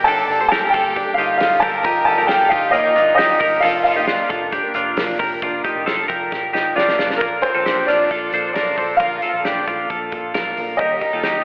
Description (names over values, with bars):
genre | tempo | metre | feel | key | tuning
jangly indie pop | 134 BPM | 4/4 | straight | Bb major | A4 = 439 Hz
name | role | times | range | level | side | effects
clear upright piano | melody | 0.0-11.4 s | Bb4 to Bb5 | -20 LUFS | equal | analog chorus, tape echo
brilliant trumpet | second line | 0.0-11.4 s | Bb3 to Bb4 | -30 LUFS | equal | tape echo
picked steel-string acoustic guitar | accompaniment | 0.0-11.4 s | G2 to Bb4 | -32 LUFS | equal | none
twelve-string electric guitar | arpeggios | 0.0-11.4 s | Bb3 to C5 | -23 LUFS | equal | subtle chorus, tape echo
vintage muted picked electric bass | bass | 0.0-11.4 s | F1 to Eb2 | -42 LUFS | equal | none
loose indie drum kit | drums | 0.1-11.3 s | hi-hat, kick drum, snare drum | -30 LUFS | equal | none
room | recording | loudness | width
wet lush hall reverb, RT60 2.1 s | dreamy mix soaked in reverb, cassette tape, telephone sound | -18 LUFS | mono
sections
0.0-5.4 A section; 5.4-7.2 B section; 7.2-11.4 C section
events
drum fill 6.3-7.2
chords
0.0 Gmadd9; 1.9 Ebadd9/G; 3.6 Bb/F; 7.2 Bbmaj7; 10.8 Ebmaj7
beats
| 0.07 0.52 0.96 1.41 | 1.85 2.30 2.74 3.19 | 3.63 4.08 4.53 4.97 | 5.42 5.87 6.31 6.76 | 7.21 7.66 8.10 8.55 | 9.00 9.45 9.89 10.34 | 10.79 11.24